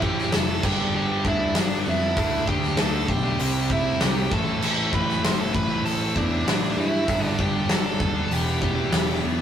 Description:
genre	quiet-loud alternative rock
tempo	98 BPM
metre	4/4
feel	straight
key	A minor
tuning	A4 = 442 Hz
part	dark smooth lead guitar	melody	0.0-9.2 s	D4 to C6	-27 LUFS	right 1 dB	overdrive
part	cranked stack guitar	riff	0.0-9.4 s	G2 to E4	-32 LUFS	right 6 dB	overdrive
part	fuzz guitar	riff	0.0-9.4 s	E2 to D4	-29 LUFS	equal	distortion
part	scooped high-gain guitar	riff	0.0-9.4 s	G2 to E4	-32 LUFS	left 6 dB	distortion
part	growling picked electric bass	bass	0.0-9.4 s	E1 to G2	-29 LUFS	equal	overdrive
part	huge arena drum kit	drums	0.0-9.1 s	crash cymbal, hi-hat, kick drum, snare drum	-25 LUFS	left 1 dB	none
room	light reverb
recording	rough rehearsal-room recording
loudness	-20 LUFS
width	side -9 dB against mid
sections	0.0-9.4 A section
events	none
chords	0.0 Am; 0.6 G6; 2.2 Dsus4; 3.4 C; 4.3 Am; 7.1 G6; 8.3 Em

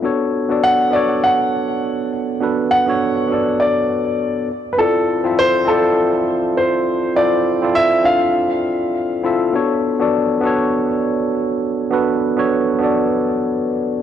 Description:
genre	chillout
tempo	101 BPM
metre	4/4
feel	swing 56% on 16ths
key	unclear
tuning	A4 = 439 Hz
part	tine electric piano	accompaniment	0.0-14.0 s	B3 to F5	-17 LUFS	moving between left 5 dB and right 5 dB	overdrive, auto-pan, tape echo
part	warm grand piano	melody	0.6-9.2 s	A4 to F#5	-17 LUFS	equal	tape echo
room	moderate lush hall reverb, RT60 2.5 s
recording	dry, gritty hardware recording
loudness	-15 LUFS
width	side -9 dB against mid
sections	0.0-9.5 A section; 9.5-14.0 B section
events	none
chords	0.0 Bm9; 4.5 Dm9; 9.5 Bm9

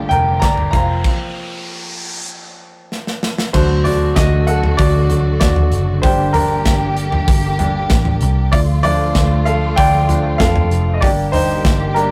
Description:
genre	piano-driven pop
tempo	96 BPM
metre	4/4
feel	straight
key	unclear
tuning	A4 = 437 Hz
part	clear baby grand piano	accompaniment	0.0-12.1 s	D3 to Bb5	-20 LUFS	equal	none
part	warm symphonic string section	sustained chords	0.0-12.1 s	Bb2 to G4	-26 LUFS	equal	none
part	vintage muted picked electric bass	bass	0.0-12.1 s	F1 to F2	-19 LUFS	equal	none
part	riser	sound effects	0.0-2.3 s	none	-31 LUFS	equal	none
part	modern studio drum kit	drums	0.1-12.1 s	crash cymbal, hi-hat, kick drum, snare drum, toms	-20 LUFS	equal	none
room	moderate studio reverb, RT60 0.5 s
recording	rough rehearsal-room recording, warm saturation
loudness	-15 LUFS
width	mono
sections	0.0-3.5 A section; 3.5-12.1 B section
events	riser 0.0-3.5; grand piano solo 0.0-3.5, 3.5-12.1; stop 1.0-3.5; drum fill 2.9-3.5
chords	0.0 Gmadd9; 0.7 Fsus4; 3.5 D; 6.0 Gm; 8.5 Dm; 11.0 Gm

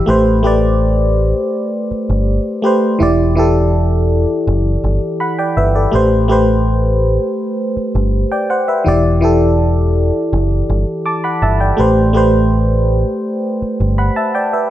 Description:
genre	contemporary R&B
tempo	82 BPM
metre	4/4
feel	straight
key	unclear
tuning	A4 = 439 Hz
part	FM electric piano	accompaniment	0.0-14.7 s	E3 to D6	-14 LUFS	equal	chorus
part	deep dub picked electric bass	bass	0.1-14.1 s	E1 to A1	-15 LUFS	equal	none
room	light reverb, digital ambience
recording	none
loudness	-12 LUFS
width	side -13 dB against mid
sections	0.0-14.7 A section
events	none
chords	0.1 Am9; 3.0 Em7; 5.9 Am9; 8.9 Em7; 11.8 Am9

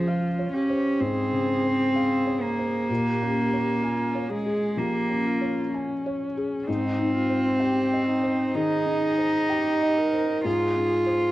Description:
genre	neoclassical piano and strings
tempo	64 BPM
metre	4/4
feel	rubato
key	Ab major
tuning	A4 = 440 Hz
part	warm cello	second line	0.0-11.3 s	F3 to F4	-23 LUFS	right 1 dB	cassette tape
part	dark viola	accompaniment	0.0-11.3 s	Db4 to Bb4	-32 LUFS	left 1 dB	cassette tape
part	felt-muted upright piano	accompaniment	0.0-11.3 s	Db2 to Ab5	-29 LUFS	left 2 dB	cassette tape
room	light reverb, studio ambience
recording	home recording on cassette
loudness	-22 LUFS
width	side -16 dB against mid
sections	0.0-11.3 A section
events	none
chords	0.0 Dbmaj7; 2.9 Bbm7; 6.7 Abmaj7

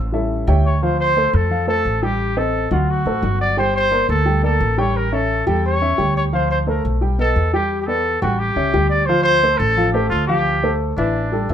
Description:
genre	jazz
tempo	174 BPM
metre	4/4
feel	straight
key	D minor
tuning	A4 = 440 Hz
part	upright bass	bass	0.0-11.5 s	G1 to F2	-20 LUFS	equal	none
part	warm upright piano	accompaniment	0.1-11.5 s	E3 to G5	-21 LUFS	left 1 dB	none
part	mellow trumpet	melody	0.7-11.5 s	D4 to D5	-19 LUFS	equal	none
room	light reverb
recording	minimal, uncompressed stereo recording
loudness	-16 LUFS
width	side -9 dB against mid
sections	0.8-11.5 A section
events	none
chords	0.1 A7; 0.8 Dm7; 2.2 Am7b5; 2.9 D7; 3.6 Gmadd9; 5.0 A7; 6.3 Dm7; 7.0 Baug7; 7.7 Em7; 8.4 A7; 9.1 Dm9

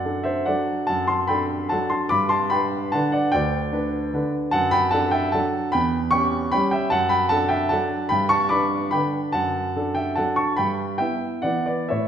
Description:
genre	classical, piano waltz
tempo	126-161 BPM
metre	3/4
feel	rubato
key	G major, D major from 4.5 s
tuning	A4 = 441 Hz
part	warm grand piano	solo	0.0-12.1 s	D2 to D6	-20 LUFS	equal	none
room	wet recital hall reverb, RT60 1.5 s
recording	heard from further back in the room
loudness	-20 LUFS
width	side -8 dB against mid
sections	0.0-12.1 A section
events	none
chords	0.0 D/F#; 2.1 G; 4.5 D/F#; 5.7 C#dim/E; 6.9 D/F#; 8.1 G; 9.3 D/F#; 10.6 Em/G

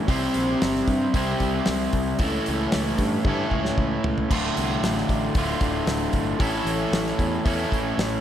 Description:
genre	classic rock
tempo	114 BPM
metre	4/4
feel	straight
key	unclear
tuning	A4 = 440 Hz
part	crunchy overdriven guitar	riff	0.0-8.2 s	D2 to C5	-23 LUFS	equal	slapback echo
part	modern bright picked electric bass	bass	0.1-8.2 s	D1 to G2	-29 LUFS	equal	none
part	damped 70s drum kit	drums	0.1-8.1 s	crash cymbal, hi-hat, kick drum, snare drum, toms	-27 LUFS	equal	none
room	moderate scoring stage reverb, RT60 1.8 s, small room ambience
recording	big arena sound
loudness	-21 LUFS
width	side -10 dB against mid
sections	0.0-8.2 A section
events	drum fill 3.3-4.3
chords	0.1 C; 2.2 A/C#; 4.3 Dm; 6.4 A

